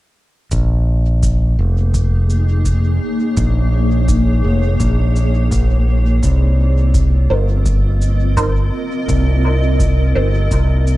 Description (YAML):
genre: ambient dub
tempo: 84 BPM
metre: 4/4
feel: straight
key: Bb dorian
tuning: A4 = 437 Hz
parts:
  - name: granular cloud pad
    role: sustained chords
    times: 1.6-11.0 s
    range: Bb3 to Eb5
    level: -21 LUFS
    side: equal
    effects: built-in reverb
  - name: modern bright fingered electric bass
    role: bass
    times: 0.5-11.0 s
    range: F1 to C2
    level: -14 LUFS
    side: equal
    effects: tube saturation
  - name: cabasa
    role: drums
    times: 0.5-11.0 s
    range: none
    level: -33 LUFS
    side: right 2 dB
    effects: dub echo
  - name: electronic kick drum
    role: drums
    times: 0.5-10.7 s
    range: none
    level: -20 LUFS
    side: equal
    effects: none
  - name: filtered dub chord stab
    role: stabs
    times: 7.3-10.3 s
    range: Eb4 to C5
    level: -22 LUFS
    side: right 2 dB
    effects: phaser, ensemble chorus, cassette tape, dub echo
room: little or no reverb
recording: echo-heavy mix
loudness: -13 LUFS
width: side -17 dB against mid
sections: 0.5-11.0 A section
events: none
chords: 0.5 Bbm7; 6.2 Cm7